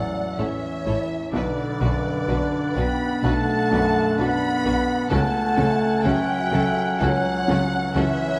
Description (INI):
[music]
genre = cinematic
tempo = 64 BPM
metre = 4/4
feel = rubato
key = unclear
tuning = A4 = 438 Hz
[part]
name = warm symphonic violin section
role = melody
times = 0.0-8.4 s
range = D5 to B5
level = -33 LUFS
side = equal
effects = none
[part]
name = clear clarinet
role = second line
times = 0.0-8.4 s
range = C#4 to D4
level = -33 LUFS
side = equal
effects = none
[part]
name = mellow cor anglais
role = second line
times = 0.0-8.4 s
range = E5 to F#5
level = -34 LUFS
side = equal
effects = none
[part]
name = mellow large flute ensemble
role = second line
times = 0.0-8.4 s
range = B4 to G5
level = -32 LUFS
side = equal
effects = none
[part]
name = felt-muted upright piano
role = accompaniment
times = 0.0-8.4 s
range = A1 to B4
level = -30 LUFS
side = equal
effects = none
[part]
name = mellow French horn section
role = sustained chords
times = 0.0-8.4 s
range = D3 to B3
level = -28 LUFS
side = equal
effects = none
[part]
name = warm symphonic violin section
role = second line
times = 0.4-8.0 s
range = F#4 to C#5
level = -38 LUFS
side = equal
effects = none
[part]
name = warm symphonic viola section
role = accompaniment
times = 0.4-8.0 s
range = F#3 to E4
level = -35 LUFS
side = equal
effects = none
[part]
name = rich symphonic cello section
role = bass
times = 0.4-8.0 s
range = A2 to C#3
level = -32 LUFS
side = equal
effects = none
[part]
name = rich symphonic double bass section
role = bass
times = 0.4-8.0 s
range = A1 to C#2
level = -32 LUFS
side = equal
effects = none
[sound]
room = wet scoring stage reverb, RT60 2.0 s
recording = none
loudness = -22 LUFS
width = mono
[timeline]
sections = 0.0-8.4 A section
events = none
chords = 0.0 A; 1.3 Bm; 5.1 F#m/C#